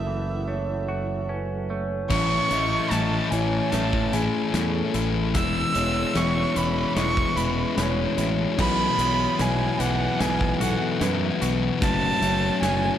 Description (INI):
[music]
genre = post-rock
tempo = 74 BPM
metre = 4/4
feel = straight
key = unclear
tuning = A4 = 443 Hz
[part]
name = dark violin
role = melody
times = 0.0-13.0 s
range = E5 to E6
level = -27 LUFS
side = right 3 dB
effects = tape echo
[part]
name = glassy FM pad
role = sustained chords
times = 0.0-13.0 s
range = E3 to F#5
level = -38 LUFS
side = right 1 dB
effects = none
[part]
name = semi-hollow electric guitar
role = arpeggios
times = 0.0-13.0 s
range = E2 to F#4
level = -34 LUFS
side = right 1 dB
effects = wide subtle chorus, tape echo
[part]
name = vibraphone with soft mallets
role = arpeggios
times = 0.0-13.0 s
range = G#4 to D#6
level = -32 LUFS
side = right 7 dB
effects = tape echo
[part]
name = growling fingered electric bass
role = bass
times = 0.0-12.9 s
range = E1 to F#2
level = -28 LUFS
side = equal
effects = overdrive
[part]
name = thick fuzz guitar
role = riff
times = 2.1-13.0 s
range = A2 to F#4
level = -25 LUFS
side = left 7 dB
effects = distortion
[part]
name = big rock drum kit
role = drums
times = 2.1-12.8 s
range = crash cymbal, hi-hat, kick drum, snare drum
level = -30 LUFS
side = equal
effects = none
[sound]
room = moderate spring reverb, RT60 2.7 s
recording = none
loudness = -21 LUFS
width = side -10 dB against mid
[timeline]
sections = 0.0-2.1 A section; 2.1-13.0 B section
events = build-up 2.1-13.0; drum fill 2.1-13.0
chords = 0.0 F#m7; 2.1 A; 5.3 E6; 8.6 Bsus4; 11.8 F#m7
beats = 0.48 1.29 | 2.11 2.92 3.73 4.54 | 5.35 6.16 6.97 7.78 | 8.59 9.39 10.20 11.01 | 11.82 12.62